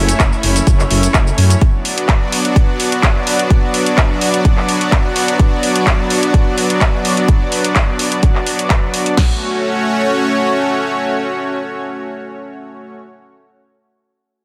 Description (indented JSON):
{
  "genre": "progressive house",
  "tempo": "127 BPM",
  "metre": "4/4",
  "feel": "straight",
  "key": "F# minor",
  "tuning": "A4 = 440 Hz",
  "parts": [
    { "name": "supersaw pad", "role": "sustained chords", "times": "0.0-12.9 s", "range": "F#3 to D5", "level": "-19 LUFS", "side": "equal", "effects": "sidechain pumping" },
    { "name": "dark detuned saw bass", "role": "bass", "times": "0.0-1.5 s", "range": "F#1 to F#2", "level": "-17 LUFS", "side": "equal", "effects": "sidechain pumping" },
    { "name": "house drum kit", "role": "drums", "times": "0.1-9.2 s", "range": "handclaps, hi-hat, shaker", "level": "-21 LUFS", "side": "equal", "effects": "none" },
    { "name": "house drum kit", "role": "drums", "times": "0.2-9.3 s", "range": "crash cymbal, kick drum, snare drum", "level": "-16 LUFS", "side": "equal", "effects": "none" }
  ],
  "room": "light reverb, digital ambience",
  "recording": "none",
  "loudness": "-14 LUFS",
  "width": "mono",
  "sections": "0.0-9.2 A section; 9.2-13.0 B section",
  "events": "none",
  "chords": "0.0 F#m; 1.6 Bm/F#; 9.2 F#m",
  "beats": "0.20 0.67 1.14 | 1.61 2.09 2.56 3.03 | 3.50 3.98 4.45 4.92 | 5.39 5.87 6.34 6.81 | 7.28 7.76 8.23 8.70 | 9.17 9.65 10.12 10.59 | 11.06 11.54 12.01 12.48"
}